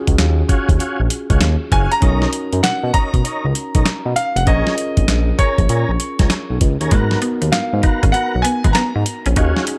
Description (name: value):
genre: R&B, new jack swing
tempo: 98 BPM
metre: 4/4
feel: swing 64% on 16ths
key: G# dorian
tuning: A4 = 440 Hz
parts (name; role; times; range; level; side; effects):
- bell-like tine electric piano; accompaniment; 0.0-9.8 s; A#3 to A#4; -28 LUFS; equal; none
- smooth synth bass; bass; 0.1-9.5 s; E#1 to B2; -20 LUFS; equal; none
- dusty soul sampler-style drum kit; drums; 0.1-9.8 s; handclaps, hi-hat, kick drum, snare drum; -19 LUFS; equal; none
- tonewheel organ; stabs; 0.5-9.7 s; B3 to A#4; -28 LUFS; equal; chorus vibrato, slapback echo
- clear concert grand piano; melody; 1.7-9.2 s; C#5 to A#5; -24 LUFS; equal; slapback echo
- clean electric guitar; riff; 6.9-9.7 s; G#3 to D#4; -26 LUFS; equal; lush chorus
room: light reverb, digital ambience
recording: none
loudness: -17 LUFS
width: mono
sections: 0.0-9.8 A section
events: none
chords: 0.0 D#m11; 2.0 Bmaj9; 4.5 A#m7; 6.9 G#m9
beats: 0.18 0.80 1.41 | 2.02 2.63 3.25 3.86 | 4.47 5.08 5.69 6.31 | 6.92 7.53 8.14 8.76 | 9.37